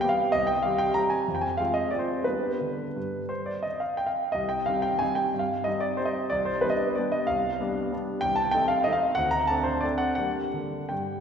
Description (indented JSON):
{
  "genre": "classical, piano waltz",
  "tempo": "157-203 BPM",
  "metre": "3/4",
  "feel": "rubato",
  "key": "unclear",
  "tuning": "A4 = 440 Hz",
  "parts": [
    { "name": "clear grand piano", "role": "solo", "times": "0.0-11.2 s", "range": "C2 to Bb5", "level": "-24 LUFS", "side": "equal", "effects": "none" }
  ],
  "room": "wet concert hall reverb, RT60 2.0 s",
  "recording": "heard from further back in the room",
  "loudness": "-24 LUFS",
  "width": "side -7 dB against mid",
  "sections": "0.0-11.2 A section",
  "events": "none",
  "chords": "0.3 C5; 1.3 Fm; 2.3 G; 4.3 Cm; 6.3 G7/C; 8.2 Adim/C; 9.2 D5; 10.2 Gm",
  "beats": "0.03 | 0.34 0.65 0.96 | 1.28 1.60 1.93 | 2.26 2.61 2.96 | 3.31 3.65 4.00 | 4.35 4.68 5.02 | 5.35 5.67 5.99 | 6.32 6.64 6.98 | 7.30 7.60 7.92 | 8.23 8.54 8.86 | 9.18 9.50 9.84 | 10.18 10.54 10.91"
}